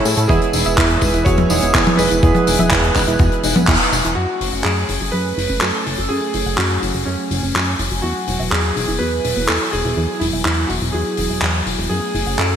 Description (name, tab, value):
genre	italo disco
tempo	124 BPM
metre	4/4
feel	straight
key	E major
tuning	A4 = 438 Hz
part	warm electric grand piano	melody	0.0-12.6 s	C#4 to C#5	-23 LUFS	right 2 dB	lush chorus, digital delay
part	warm analog pad	sustained chords	0.0-12.6 s	F#3 to F#6	-26 LUFS	equal	chorus
part	barky tine electric piano	stabs	0.0-3.4 s	E3 to C#5	-22 LUFS	right 4 dB	none
part	soft round pluck	arpeggios	0.1-12.5 s	B3 to F#5	-26 LUFS	equal	chorus, ping-pong delay
part	chorused synth bass	bass	0.1-12.6 s	E1 to A2	-21 LUFS	equal	tube saturation
part	tight funk drum kit	drums	0.1-12.5 s	handclaps, hi-hat, tambourine, toms	-19 LUFS	left 1 dB	gated reverb
part	electronic kick drum	drums	0.3-3.8 s	none	-18 LUFS	equal	overdrive
room	moderate lush hall reverb, RT60 2.8 s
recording	bright 1980s-style digital production, vinyl crackle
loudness	-15 LUFS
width	side -8 dB against mid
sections	0.0-4.2 A section; 4.2-12.6 B section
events	band accent 3.7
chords	0.3 E; 4.2 F#madd9; 8.0 Eadd9; 11.9 F#madd9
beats	| 0.29 0.78 1.26 1.75 | 2.23 2.71 3.20 3.68 | 4.16 4.65 5.13 5.62 | 6.10 6.58 7.07 7.55 | 8.04 8.52 9.00 9.49 | 9.97 10.46 10.94 11.42 | 11.91 12.39